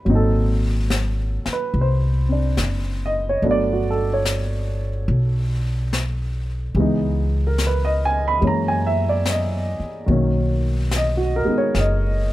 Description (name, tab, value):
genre	jazz ballad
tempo	72 BPM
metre	4/4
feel	swing 66% on 8ths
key	B major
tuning	A4 = 439 Hz
part	dark grand piano	accompaniment	0.0-12.3 s	A#2 to B5	-22 LUFS	right 1 dB	none
part	upright bass	bass	0.1-12.3 s	F#1 to F#2	-21 LUFS	equal	none
part	jazz brush drum kit	drums	0.1-12.3 s	brushed snare drum, hi-hat, snare drum	-29 LUFS	left 3 dB	none
room	little or no reverb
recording	close, detailed microphones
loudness	-18 LUFS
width	side -15 dB against mid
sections	0.0-12.3 A section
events	none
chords	0.1 G#9; 3.4 Gmaj9; 6.8 C#m7; 8.4 F#9; 10.1 Bmaj9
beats	| 0.06 0.89 1.73 2.57 | 3.41 4.25 5.08 5.92 | 6.75 7.58 8.42 9.25 | 10.08 10.91 11.74